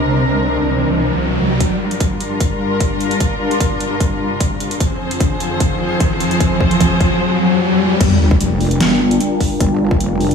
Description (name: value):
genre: heavy wobble dubstep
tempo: 150 BPM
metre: 4/4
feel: swing 53% on 16ths, half-time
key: G phrygian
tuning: A4 = 444 Hz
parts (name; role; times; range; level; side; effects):
- dark symphonic string section; sustained chords; 0.0-10.3 s; F2 to G5; -18 LUFS; left 1 dB; sidechain pumping, low-pass filter
- wobble bass; bass; 0.0-1.6, 8.0-10.3 s; F1 to C2; -18 LUFS; equal; chorus, overdrive
- riser and sub drop; sound effects; 0.3-9.6 s; none; -19 LUFS; left 1 dB; none
- dubstep drum kit; drums; 1.6-10.3 s; crash cymbal, hi-hat, snare drum; -23 LUFS; right 1 dB; overdrive
- electronic kick drum; drums; 1.6-10.0 s; none; -18 LUFS; equal; overdrive
- pulsing pluck wobble bass; bass; 8.8-9.2 s; G1; -14 LUFS; left 1 dB; chorus, overdrive
room: moderate lush hall reverb, RT60 1.7 s, digital ambience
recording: dreamy mix soaked in reverb, small room ambience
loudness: -13 LUFS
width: side -6 dB against mid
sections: 0.0-1.6 A section; 1.6-8.0 B section; 8.0-10.3 C section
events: riser 0.3-1.6, 1.6-8.0; build-up 1.6-8.0; drum fill 4.8-7.2; drop 8.0-10.3; impact 8.0-9.6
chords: 0.0 Cm7; 1.6 Gm7; 4.8 Fm; 8.0 Gm7